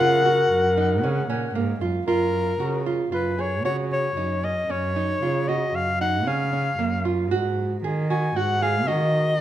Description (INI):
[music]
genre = contemporary instrumental, chamber music in an uneven meter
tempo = 115 BPM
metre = 5/4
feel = straight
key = F# major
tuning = A4 = 440 Hz
[part]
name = breathy soprano saxophone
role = melody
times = 0.0-9.4 s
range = A#4 to G#5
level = -25 LUFS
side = left 3 dB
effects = none
[part]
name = dark clarinet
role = second line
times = 0.0-1.8 s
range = A#4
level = -22 LUFS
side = left 2 dB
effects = none
[part]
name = nylon-string guitar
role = arpeggios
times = 0.0-9.3 s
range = A#3 to G#4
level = -27 LUFS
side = right 5 dB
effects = none
[part]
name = warm cello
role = bass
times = 0.0-9.4 s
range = F#2 to D#3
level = -26 LUFS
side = right 2 dB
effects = none
[sound]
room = wet recital hall reverb, RT60 1.8 s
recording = minimal, uncompressed stereo recording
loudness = -21 LUFS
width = side -12 dB against mid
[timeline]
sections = 0.0-2.1 A section; 2.1-9.4 A section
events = none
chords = 0.0 F#maj7; 2.1 F#maj7(no3); 7.3 G#7(no3)